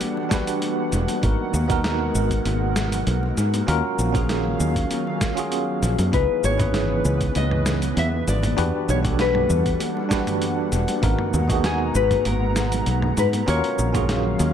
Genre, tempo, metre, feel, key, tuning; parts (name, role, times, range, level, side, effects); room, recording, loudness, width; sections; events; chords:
sunset chillout; 98 BPM; 4/4; straight; A4 = 441 Hz
bell-like tine electric piano; accompaniment; 0.0-14.5 s; B3 to B4; -26 LUFS; moving between left 4 dB and right 6 dB; medium stereo tremolo, auto-pan, dub echo
airy breathy pad; sustained chords; 0.0-14.5 s; B2 to A#5; -28 LUFS; equal; chorus
dusty soul sampler-style drum kit; drums; 0.0-14.5 s; cabasa, hi-hat, snare drum, toms; -29 LUFS; right 1 dB; overdrive, dub echo
congas and bongos; percussion; 0.0-14.4 s; -33 LUFS; left 3 dB; dub echo
electronic kick drum; drums; 0.3-14.1 s; -24 LUFS; equal; overdrive
fingered electric bass; bass; 0.9-14.5 s; E1 to G#2; -23 LUFS; equal; tube saturation
nylon-string guitar; melody; 6.1-14.5 s; G#4 to E5; -26 LUFS; left 6 dB; dub echo
moderate plate reverb, RT60 2.3 s; echo-heavy mix; -19 LUFS; side -9 dB against mid
0.0-14.5 A section
0.0 Em9; 1.2 G#m9; 3.7 D#m9; 6.1 C#m9; 8.6 Em9; 11.0 G#m9; 13.5 D#m9